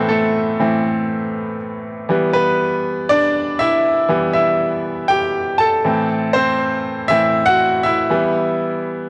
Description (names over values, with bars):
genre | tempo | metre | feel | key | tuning
pop | 120 BPM | 4/4 | straight | E minor | A4 = 440 Hz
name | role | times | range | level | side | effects
bright baby grand piano | solo | 0.0-9.1 s | A2 to A5 | -18 LUFS | equal | none
room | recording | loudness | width
moderate booth ambience, RT60 0.2 s | home recording on cassette | -17 LUFS | mono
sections
0.0-9.1 A section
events
grand piano solo 0.0-9.1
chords
0.0 Amadd9; 2.1 Em; 5.9 Am; 8.1 Em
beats
| 0.10 0.60 1.10 1.60 | 2.10 2.60 3.10 3.60 | 4.10 4.60 5.10 5.60 | 6.10 6.60 7.10 7.60 | 8.10 8.60